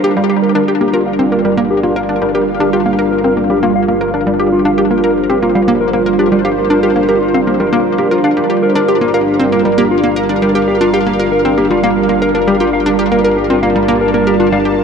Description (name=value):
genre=ambient, sequencer-driven space music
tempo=117 BPM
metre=4/4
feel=straight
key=G minor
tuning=A4 = 444 Hz
part: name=sweeping resonant pad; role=sustained chords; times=0.0-14.8 s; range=G3 to A5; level=-13 LUFS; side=right 2 dB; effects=chorus
part: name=hollow square pluck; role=riff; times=0.0-14.7 s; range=G3 to Bb4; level=-16 LUFS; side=equal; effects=chorus, ping-pong delay
part: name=mellow electric guitar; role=arpeggios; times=0.2-14.6 s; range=F4 to F5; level=-16 LUFS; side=left 3 dB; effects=auto-pan, low-pass filter, ping-pong delay
part: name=analog drone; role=bass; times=1.0-14.8 s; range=G1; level=-30 LUFS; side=equal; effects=chorus
room=wet huge ambient reverb, RT60 8.4 s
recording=dark, warm production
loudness=-10 LUFS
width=side -6 dB against mid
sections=0.2-14.8 A section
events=fade-in on synth drone 0.2-14.8; filter sweep on clean electric guitar 0.2-14.8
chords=0.2 Gm7